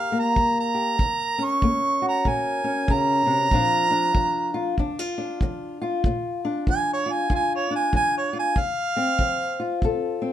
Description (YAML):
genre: acoustic country blues, solo or duo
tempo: 95 BPM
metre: 4/4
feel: swing 60% on 8ths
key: Bb mixolydian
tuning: A4 = 440 Hz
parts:
  - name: warm harmonica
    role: melody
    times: 0.0-9.8 s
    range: Db5 to Db6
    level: -22 LUFS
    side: right 2 dB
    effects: none
  - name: fingerpicked old ladder-braced acoustic guitar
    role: accompaniment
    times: 0.0-10.3 s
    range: F2 to Bb4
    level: -26 LUFS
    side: left 2 dB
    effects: none
  - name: kick drum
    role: drums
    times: 0.4-10.0 s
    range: none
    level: -25 LUFS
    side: equal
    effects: none
room: moderate small room reverb, RT60 0.5 s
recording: minimal, uncompressed stereo recording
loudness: -21 LUFS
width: side -11 dB against mid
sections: 0.0-10.3 A section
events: harmonica solo 0.0-10.3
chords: 0.0 Eb (rootless); 1.0 Ebm7; 3.5 Bb; 8.6 F